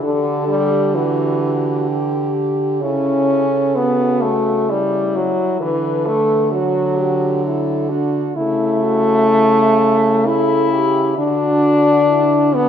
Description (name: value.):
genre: classical, lyrical piece for horn quartet.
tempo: 65 BPM.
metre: 3/4.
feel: rubato.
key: D major.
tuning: A4 = 437 Hz.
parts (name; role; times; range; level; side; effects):
warm French horn; melody; 0.0-12.7 s; D4 to B4; -23 LUFS; left 7 dB; none.
clear French horn; second line; 0.0-12.7 s; E4 to A4; -24 LUFS; right 8 dB; none.
warm French horn; accompaniment; 0.0-12.7 s; D3 to E4; -16 LUFS; left 2 dB; none.
warm French horn; bass; 0.0-12.7 s; C#3 to D3; -22 LUFS; right 3 dB; none.
room: moderate concert hall reverb, RT60 2.1 s.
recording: minimal, uncompressed stereo recording.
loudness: -14 LUFS.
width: side -8 dB against mid.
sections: 0.0-12.7 A section.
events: none.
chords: 0.0 Em7/D; 2.8 A/C#; 5.6 D; 8.4 A7/C#; 11.2 D.